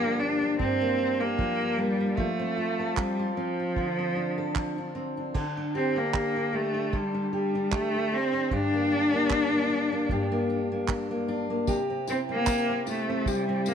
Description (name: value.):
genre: acoustic pop.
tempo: 76 BPM.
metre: 4/4.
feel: swing 55% on 16ths.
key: G minor.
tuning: A4 = 444 Hz.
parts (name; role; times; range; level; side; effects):
rich cello; melody; 0.0-13.7 s; F3 to D4; -27 LUFS; equal; none.
fingerpicked steel-string acoustic guitar; accompaniment; 0.0-13.7 s; G2 to A4; -29 LUFS; left 1 dB; none.
cloth-damped thuddy drum kit; drums; 0.6-13.7 s; crash cymbal, handclaps, kick drum, tambourine; -32 LUFS; right 2 dB; none.
tambourine; percussion; 11.7-13.7 s; none; -41 LUFS; left 16 dB; none.
room: light reverb, studio reverb.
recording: 1960s-style stereo, faint mains hum.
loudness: -25 LUFS.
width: side -8 dB against mid.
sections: 0.0-5.3 A section; 5.3-13.7 B section.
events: none.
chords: 0.0 Gm7; 2.2 F; 3.8 Dm7; 5.3 Dsus4; 8.5 Gm; 11.7 C.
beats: 0.60 1.39 | 2.18 2.98 3.77 4.56 | 5.35 6.14 6.93 7.72 | 8.51 9.30 10.09 10.88 | 11.68 12.47 13.26.